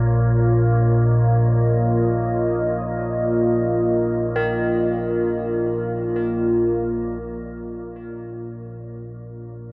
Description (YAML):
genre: dark ambient drone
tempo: free time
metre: none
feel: none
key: Bb minor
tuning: A4 = 440 Hz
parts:
  - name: dark analog pad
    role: sustained chords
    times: 0.0-9.7 s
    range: Bb3 to Eb5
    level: -25 LUFS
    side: equal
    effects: chorus
  - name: dark detuned synth bell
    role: arpeggios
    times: 0.0-9.7 s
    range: Bb4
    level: -32 LUFS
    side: equal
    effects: chorus, tape echo
  - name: organ-like drone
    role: drone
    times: 0.0-9.7 s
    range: Bb1 to Bb2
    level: -25 LUFS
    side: equal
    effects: ensemble chorus, built-in reverb, phaser
  - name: wind-like tuned noise texture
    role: texture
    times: 0.0-7.2 s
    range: Db5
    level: -44 LUFS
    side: equal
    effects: built-in reverb
room: wet huge ambient reverb, RT60 8.2 s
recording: worn, warbling old tape, cassette tape, warbly pitch drift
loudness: -20 LUFS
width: mono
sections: 0.0-7.2 A section; 7.2-9.7 B section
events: fade-out on synth texture 0.0-7.2; filter sweep on synth drone 7.2-9.7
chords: 0.0 Bbm